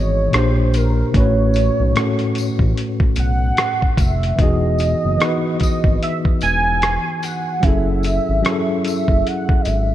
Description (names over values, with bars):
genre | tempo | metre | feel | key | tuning
lo-fi hip hop | 74 BPM | 4/4 | swing 60% on 16ths | E major | A4 = 441 Hz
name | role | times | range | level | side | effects
warm velvety synth lead | melody | 0.0-9.9 s | A#4 to G#5 | -22 LUFS | right 3 dB | chorus, phaser, low-pass filter, analog delay
tine electric piano | accompaniment | 0.0-9.9 s | A2 to B#4 | -20 LUFS | left 1 dB | overdrive, fast stereo tremolo, low-pass filter
smooth synth bass | bass | 0.0-9.9 s | E1 to B1 | -19 LUFS | equal | none
dusty soul sampler-style drum kit | drums | 0.3-9.9 s | hi-hat, kick drum, rim click | -19 LUFS | equal | none
tambourine | percussion | 0.7-9.9 s | none | -39 LUFS | left 6 dB | none
room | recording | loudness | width
light reverb, digital ambience | cassette tape | -15 LUFS | side -12 dB against mid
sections
0.0-9.9 A section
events
none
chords
0.3 A#69; 1.1 A69; 4.4 Emaj9; 7.6 F#m9